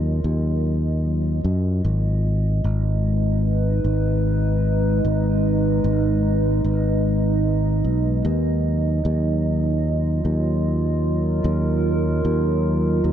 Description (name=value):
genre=ambient dub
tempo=75 BPM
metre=4/4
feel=swing 56% on 16ths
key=Eb minor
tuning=A4 = 440 Hz
part: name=warbly tape-like pad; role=sustained chords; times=0.0-13.1 s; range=Gb3 to Eb5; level=-24 LUFS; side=right 2 dB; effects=chorus, built-in reverb
part: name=fingered electric bass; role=bass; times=0.0-13.1 s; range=Ab1 to Gb2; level=-20 LUFS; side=left 1 dB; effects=tube saturation
room=light reverb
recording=none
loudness=-18 LUFS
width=side -10 dB against mid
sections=0.0-13.1 A section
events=none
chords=0.0 Ebmadd9; 1.8 Abm; 8.2 Ebmadd9